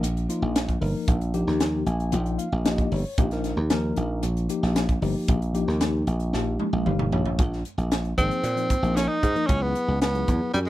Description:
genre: electric jazz fusion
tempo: 114 BPM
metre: 4/4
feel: straight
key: Bb dorian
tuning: A4 = 436 Hz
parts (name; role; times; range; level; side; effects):
- mellow tine electric piano; accompaniment; 0.0-10.5 s; F3 to Ab5; -28 LUFS; left 3 dB; medium stereo tremolo
- dry thumbed slap bass; bass; 0.0-10.7 s; G1 to Bb2; -25 LUFS; equal; none
- crisp fusion drum kit; drums; 0.0-10.7 s; hi-hat, kick drum, snare drum, toms; -26 LUFS; equal; none
- clear tenor saxophone; melody; 8.2-10.7 s; G3 to Eb4; -25 LUFS; right 1 dB; slapback echo
room: little or no reverb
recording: none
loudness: -22 LUFS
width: side -15 dB against mid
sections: 0.0-7.4 A section; 7.4-10.7 B section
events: tine electric piano fill 1.6-3.2, 6.6-7.4; drum fill 6.3-7.4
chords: 0.0 Bb5; 7.4 Bbsus2; 9.5 Dbm7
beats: 0.03 0.55 | 1.08 1.60 2.13 2.65 | 3.18 3.71 4.23 4.76 | 5.28 5.81 6.33 6.86 | 7.38 7.91 8.44 8.96 | 9.49 10.02 10.55

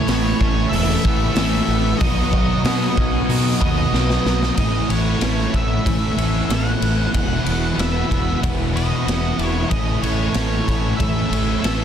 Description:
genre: rock, shoegaze and dream pop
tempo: 94 BPM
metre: 4/4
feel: straight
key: A lydian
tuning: A4 = 439 Hz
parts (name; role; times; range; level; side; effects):
- octave-fuzz lead guitar; melody; 0.0-11.8 s; C#5 to F#5; -26 LUFS; right 1 dB; distortion, slapback echo
- lush unison pad; sustained chords; 0.0-11.8 s; E4 to C#6; -32 LUFS; equal; chorus
- twangy electric guitar; arpeggios; 0.0-11.8 s; D#3 to A4; -34 LUFS; right 1 dB; ensemble chorus, slapback echo
- biting overdriven guitar; riff; 0.0-4.6 s; A2 to B3; -28 LUFS; equal; none
- overdriven semi-hollow guitar; riff; 0.0-11.8 s; E2 to A4; -25 LUFS; right 11 dB; reverse reverb
- thick fuzz guitar; riff; 0.0-11.8 s; E2 to B3; -24 LUFS; left 9 dB; distortion, wide subtle chorus
- fuzz fingered electric bass; bass; 0.1-11.8 s; E1 to B2; -22 LUFS; equal; overdrive
- raw garage drum kit; drums; 0.1-11.8 s; hi-hat, kick drum, ride cymbal, snare drum; -22 LUFS; equal; none
room: light reverb, studio reverb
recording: dense, heavily limited modern master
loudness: -16 LUFS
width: side -9 dB against mid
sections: 0.0-4.6 A section; 4.6-11.8 B section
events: drum fill 3.9-4.6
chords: 0.0 Aadd9; 2.0 Badd9; 4.6 Aadd9; 7.1 Esus2; 9.7 Aadd9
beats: 0.09 0.73 1.37 | 2.01 2.65 3.29 3.93 | 4.57 5.21 5.86 6.50 | 7.14 7.78 8.42 9.07 | 9.71 10.35 10.99 11.63

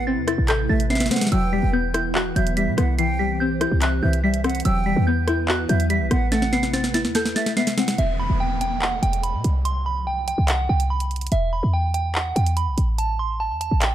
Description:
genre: hip hop, drill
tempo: 144 BPM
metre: 4/4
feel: half-time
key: E minor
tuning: A4 = 440 Hz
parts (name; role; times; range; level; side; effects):
- delicate synth tine bell; melody; 0.0-13.9 s; E5 to C7; -26 LUFS; right 3 dB; chorus, low-pass filter
- breathy jazz flute; second line; 0.0-8.0 s; E5 to G5; -31 LUFS; right 6 dB; tape echo
- string-like resonator pluck; accompaniment; 0.0-8.0 s; E3 to E5; -25 LUFS; left 4 dB; chorus, low-pass filter
- hollow soft pad; sustained chords; 0.0-8.0 s; C3 to C5; -29 LUFS; equal; ensemble chorus
- short 808-style bass; bass; 0.0-13.9 s; E1 to B2; -22 LUFS; equal; none
- drill drum kit; drums; 0.3-13.9 s; handclaps, hi-hat, rim click, snare drum; -25 LUFS; equal; none
- downlifter; sound effects; 8.0-11.3 s; none; -33 LUFS; right 1 dB; none
room: little or no reverb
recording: dark, warm production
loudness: -19 LUFS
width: side -11 dB against mid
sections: 0.0-8.0 A section; 8.0-13.9 B section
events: drum fill 0.9-1.3, 6.3-8.0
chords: 0.0 Amadd9; 1.3 Emadd9; 3.0 C; 4.7 Emadd9; 6.3 Amadd9; 8.0 E5; 9.7 Gadd11/C; 11.3 E5; 13.0 Am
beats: 0.07 0.48 0.90 | 1.32 1.74 2.15 2.57 | 2.98 3.40 3.82 4.24 | 4.65 5.07 5.49 5.90 | 6.32 6.74 7.15 7.57 | 7.99 8.40 8.82 9.23 | 9.65 10.07 10.48 10.90 | 11.32 11.73 12.15 12.57 | 12.98 13.40 13.82

